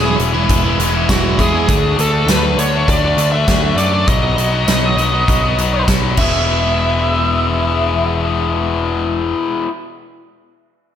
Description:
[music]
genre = classic rock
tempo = 100 BPM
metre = 4/4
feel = straight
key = E major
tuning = A4 = 443 Hz
[part]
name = smooth overdriven lead guitar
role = melody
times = 0.0-9.3 s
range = F#4 to E5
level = -19 LUFS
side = right 1 dB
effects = tape echo
[part]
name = distorted electric guitar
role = riff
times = 0.0-9.7 s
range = E2 to F#4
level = -18 LUFS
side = left 6 dB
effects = overdrive, slapback echo
[part]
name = sludgy distorted guitar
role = riff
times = 0.0-1.7 s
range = E3 to E4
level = -22 LUFS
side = right 10 dB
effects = overdrive, slapback echo
[part]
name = overdriven picked electric bass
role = bass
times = 0.0-9.3 s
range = E1 to F#2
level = -19 LUFS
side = equal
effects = none
[part]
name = huge arena drum kit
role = drums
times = 0.2-6.3 s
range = crash cymbal, hi-hat, kick drum, snare drum, tambourine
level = -18 LUFS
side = right 1 dB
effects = none
[sound]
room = moderate lush hall reverb, RT60 1.5 s, studio reverb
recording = big arena sound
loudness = -13 LUFS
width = side -9 dB against mid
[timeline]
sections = 0.0-6.5 A section; 6.5-8.9 B section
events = none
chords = 0.0 E; 1.7 D; 4.1 B; 6.2 E

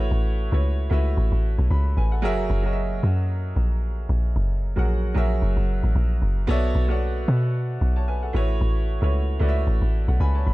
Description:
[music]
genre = amapiano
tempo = 113 BPM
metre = 4/4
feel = swing 55% on 16ths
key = unclear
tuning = A4 = 439 Hz
[part]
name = clear baby grand piano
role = accompaniment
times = 0.0-10.5 s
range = F#3 to B5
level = -28 LUFS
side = right 1 dB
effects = none
[part]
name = deep log drum bass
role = bass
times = 0.0-10.5 s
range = F#1 to B2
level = -21 LUFS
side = equal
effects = none
[sound]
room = studio reverb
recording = dark, warm production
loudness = -20 LUFS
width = side -19 dB against mid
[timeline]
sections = 0.0-10.5 A section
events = grand piano fill 9.9-10.5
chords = 0.0 A69; 2.2 F#9; 6.5 Bm11; 8.3 A69

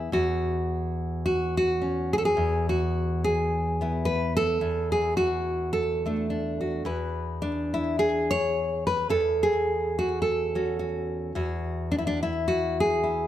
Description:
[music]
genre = folk, solo fingerstyle acoustic guitar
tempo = 107 BPM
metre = 4/4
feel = swing 56% on 8ths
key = E mixolydian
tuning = A4 = 440 Hz
[part]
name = nylon-string guitar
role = solo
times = 0.0-13.3 s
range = E2 to C#5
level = -24 LUFS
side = equal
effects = slapback echo
[sound]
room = light reverb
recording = close, detailed microphones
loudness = -24 LUFS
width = side -12 dB against mid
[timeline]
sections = 0.0-13.3 A section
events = none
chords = 0.1 F#5/E; 2.4 Eadd9; 4.6 D/E; 6.9 E; 9.1 F#m/E; 11.3 Eadd9

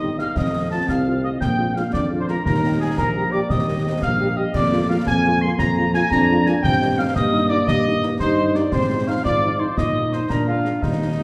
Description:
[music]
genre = military-style march for wind band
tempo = 115 BPM (dotted quarters)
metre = 6/8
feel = straight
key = Eb major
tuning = A4 = 440 Hz
[part]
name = warm trumpet section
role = melody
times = 0.0-11.2 s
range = Eb4 to C6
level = -27 LUFS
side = equal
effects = none
[part]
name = mellow piccolo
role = second line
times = 0.0-11.2 s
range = Eb5 to C7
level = -29 LUFS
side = equal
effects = none
[part]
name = mellow French horn section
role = accompaniment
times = 0.0-11.2 s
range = F3 to G4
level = -32 LUFS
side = equal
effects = none
[part]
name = dark trombone section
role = sustained chords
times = 0.0-11.2 s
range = G3 to F4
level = -27 LUFS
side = equal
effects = none
[part]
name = warm tuba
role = bass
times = 0.0-11.2 s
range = G1 to Bb2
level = -26 LUFS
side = equal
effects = none
[part]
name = concert snare drum, clash cymbals and concert bass drum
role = drums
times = 0.2-11.2 s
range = none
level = -28 LUFS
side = equal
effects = none
[sound]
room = wet recital hall reverb, RT60 1.4 s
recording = recorded in a church or concert hall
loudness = -20 LUFS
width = mono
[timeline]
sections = 0.0-11.2 A section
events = none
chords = 0.4 F7; 1.4 Bb7; 2.5 Eb; 4.5 Bb7/F; 6.6 Eb/G; 8.7 Fm7/Ab; 9.8 Eb/Bb; 10.3 Bb7

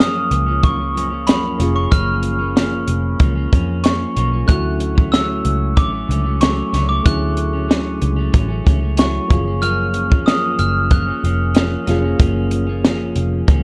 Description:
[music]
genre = indie pop, bedroom pop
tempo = 93 BPM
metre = 4/4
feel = straight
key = F# major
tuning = A4 = 440 Hz
[part]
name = glockenspiel with hard plastic mallets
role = melody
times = 0.0-13.6 s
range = B5 to F#6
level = -25 LUFS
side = equal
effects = analog chorus, plate reverb, analog delay
[part]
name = clean electric guitar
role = accompaniment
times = 0.0-13.6 s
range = F#2 to C#4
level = -26 LUFS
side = equal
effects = subtle chorus, vibrato effect, plate reverb
[part]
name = soft electric-piano-like synth keys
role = accompaniment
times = 0.0-13.6 s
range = A3 to G#4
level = -29 LUFS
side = equal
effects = chorus, plate reverb
[part]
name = vintage muted picked electric bass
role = bass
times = 0.0-13.6 s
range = E#1 to E#2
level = -22 LUFS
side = equal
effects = none
[part]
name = compact cocktail drum kit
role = drums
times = 0.0-13.6 s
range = hi-hat, kick drum, snare drum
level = -17 LUFS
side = equal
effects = vintage 12-bit sampler grit
[sound]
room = light reverb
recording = dark, warm production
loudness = -17 LUFS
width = mono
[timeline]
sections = 0.0-13.6 A section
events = none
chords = 0.0 F#maj7; 4.5 Dmaj7; 9.3 F#maj7

